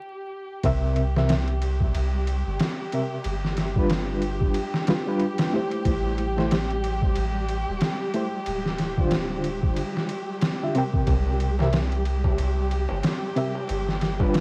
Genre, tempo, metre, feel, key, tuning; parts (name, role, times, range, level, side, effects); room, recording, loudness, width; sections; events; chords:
trip hop; 92 BPM; 4/4; swing 58% on 16ths; A4 = 440 Hz
muted chamber string section; sustained chords; 0.0-14.4 s; G4; -36 LUFS; equal; cassette tape
reed electric piano; accompaniment; 0.6-14.4 s; C3 to G5; -29 LUFS; equal; fast tremolo, cassette tape, tape echo
soft dub sub bass; bass; 0.6-14.4 s; D1 to C2; -29 LUFS; equal
trip hop sampler-style drum kit; drums; 0.6-14.4 s; kick drum, ride cymbal, snare drum; -29 LUFS; equal; low-pass filter on cymbals, low-pass filter on snare, low-pass filter on kick, low-pass filter on room
flickering grainy texture; texture; 1.1-14.4 s; G3 to G4; -37 LUFS; equal; built-in reverb, cassette tape
darbuka; percussion; 11.1-14.4 s; -41 LUFS; equal
little or no reverb; home recording on cassette, vinyl crackle; -25 LUFS; mono
0.6-14.4 A section
break 0.0-0.6
0.0 N.C.; 0.6 C7; 3.2 G7; 5.9 Am7; 8.5 Dm7; 11.1 C7; 13.7 G7